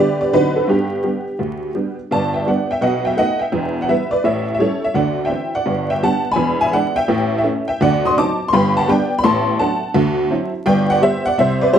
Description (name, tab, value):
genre	jazz, stride piano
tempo	168 BPM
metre	4/4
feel	swing 64% on 8ths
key	G major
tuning	A4 = 442 Hz
part	honky-tonk upright piano	solo	0.0-11.8 s	E1 to Eb6	-15 LUFS	equal	none
room	moderate club reverb, RT60 0.9 s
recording	vinyl crackle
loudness	-15 LUFS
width	side -9 dB against mid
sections	0.0-2.1 A section; 2.1-11.8 B section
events	none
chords	0.3 D7b9; 0.7 G; 2.8 B7; 3.5 Em; 4.2 A7; 4.9 Dsus2; 5.7 G; 6.4 E7; 7.1 A; 7.8 D7b9; 8.5 G; 9.2 D7/A; 9.9 D9; 10.7 G